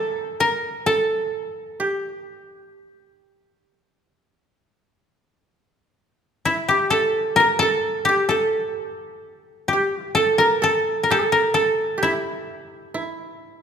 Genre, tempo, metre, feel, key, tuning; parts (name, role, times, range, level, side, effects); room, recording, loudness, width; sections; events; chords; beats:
japanese traditional, Japanese chamber music; 65 BPM; 2/4; rubato; A in sen; A4 = 440 Hz
koto; melody; 0.0-2.8, 6.5-13.6 s; E4 to Bb4; -21 LUFS; left 4 dB
koto; second line; 0.0-13.6 s; D4 to G5; -22 LUFS; right 3 dB
moderate concert hall reverb, RT60 2.4 s; minimal, uncompressed stereo recording; -18 LUFS; side -7 dB against mid
0.0-10.2 A section; 10.2-13.6 B section
| 0.86 1.79 | 2.73 3.68 | 4.61 5.53 | 6.46 7.38 | 8.30 9.24 | 10.18 11.11 | 12.03 12.93